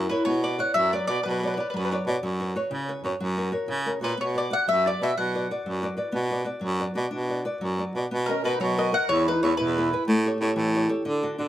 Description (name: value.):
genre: italian folk, Italian serenade.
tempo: 122 BPM (dotted quarters).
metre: 6/8.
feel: straight.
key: B harmonic minor, B major from 8.1 s.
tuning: A4 = 441 Hz.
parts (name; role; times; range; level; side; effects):
nylon-string guitar; accompaniment; 0.0-11.5 s; B2 to D#5; -28 LUFS; equal; none.
edgy baritone saxophone; bass; 0.0-11.5 s; E2 to D3; -27 LUFS; right 1 dB; none.
mandolin; melody; 0.1-2.0, 4.0-5.9, 8.3-10.0 s; A#4 to F#5; -26 LUFS; left 1 dB; none.
accordion; second line; 8.3-10.0 s; C#4 to A#4; -30 LUFS; right 6 dB; none.
room: wet studio reverb, RT60 0.6 s.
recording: none.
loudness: -23 LUFS.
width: side -12 dB against mid.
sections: 0.3-8.1 A section; 8.1-11.5 B section.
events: nylon-string guitar fill 0.0.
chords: 0.3 Bmadd9; 2.2 F#sus4; 3.2 F#; 4.2 Bm; 8.1 Bmaj7; 9.1 E; 10.1 A7.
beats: | 0.25 0.75 | 1.24 1.73 | 2.22 2.70 | 3.19 3.68 | 4.18 4.68 | 5.17 5.65 | 6.13 6.62 | 7.11 7.60 | 8.10 8.60 | 9.09 9.58 | 10.07 10.56 | 11.05.